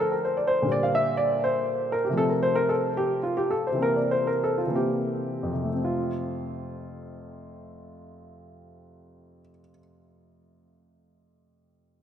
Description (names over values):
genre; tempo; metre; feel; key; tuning
classical, baroque-style suite movement for grand piano; 52-85 BPM (dotted quarters); 12/8; rubato; F major; A4 = 438 Hz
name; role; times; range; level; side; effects
warm baby grand piano; solo; 0.0-12.0 s; F2 to F5; -24 LUFS; equal; none
room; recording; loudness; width
wet church reverb, RT60 3.3 s; none; -23 LUFS; side -9 dB against mid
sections
0.0-5.9 A section; 5.9-10.0 B section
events
slowing down 0.3-5.9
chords
0.0 Dm; 0.7 Gm/Bb; 2.2 F/C; 3.8 C7; 5.9 F